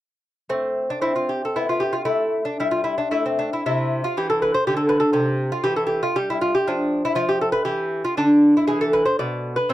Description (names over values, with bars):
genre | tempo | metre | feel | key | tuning
classical, baroque-style dance for lute | 118 BPM | 3/4 | rubato | A minor | A4 = 441 Hz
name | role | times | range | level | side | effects
lute | solo | 0.5-9.7 s | B2 to D5 | -19 LUFS | equal | none
room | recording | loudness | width
little or no reverb | dry, close 1970s-style studio recording | -19 LUFS | side -14 dB against mid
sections
0.5-9.7 A section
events
none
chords
0.5 Am; 2.1 Gsus2; 3.6 C; 6.7 G7(no3); 8.2 E5/D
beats
| 0.48 1.02 1.55 | 2.08 2.60 3.11 | 3.63 4.15 4.65 | 5.15 5.65 6.16 | 6.66 7.16 7.66 | 8.16 8.67 9.18 | 9.68